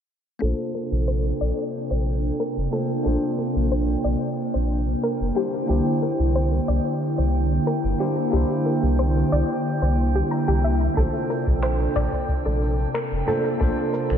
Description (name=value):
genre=sunset chillout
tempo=91 BPM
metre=4/4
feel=straight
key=Bb lydian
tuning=A4 = 443 Hz
part: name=bell-like tine electric piano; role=accompaniment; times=0.4-14.2 s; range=Bb3 to C5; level=-28 LUFS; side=moving between left 3 dB and right 3 dB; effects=auto-pan, vintage 12-bit sampler grit, tape echo, shimmer reverb
part: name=airy breathy pad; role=sustained chords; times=0.4-14.2 s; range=C3 to A4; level=-26 LUFS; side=right 1 dB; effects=chorus, shimmer reverb
part: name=soft round pluck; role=arpeggios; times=0.4-14.1 s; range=G4 to Bb5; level=-29 LUFS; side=left 1 dB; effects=chorus, tape echo, shimmer reverb
part: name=round analog bass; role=bass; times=0.4-14.2 s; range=F1 to C2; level=-22 LUFS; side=equal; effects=none
part: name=drifting glass-harmonics texture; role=texture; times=1.4-14.2 s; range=G5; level=-35 LUFS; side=right 3 dB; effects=chorus, built-in reverb, shimmer reverb
part: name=electronic kick drum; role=drums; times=11.0-13.7 s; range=none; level=-24 LUFS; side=equal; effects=none
part: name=soft brush drum kit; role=drums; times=11.0-14.2 s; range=finger snaps, shaker, toms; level=-38 LUFS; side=left 2 dB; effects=none
room=moderate lush hall reverb, RT60 2.9 s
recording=dreamy mix soaked in reverb, low-pass filter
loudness=-20 LUFS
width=side -8 dB against mid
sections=0.4-14.2 A section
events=filter sweep on analog synth bass 0.4-14.2; filter sweep on analog synth pad 0.4-14.2; filter sweep on synth arpeggio sound 0.4-14.2; filter sweep 0.4-14.2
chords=0.4 Bbmaj9; 5.4 C9; 11.0 Bbmaj9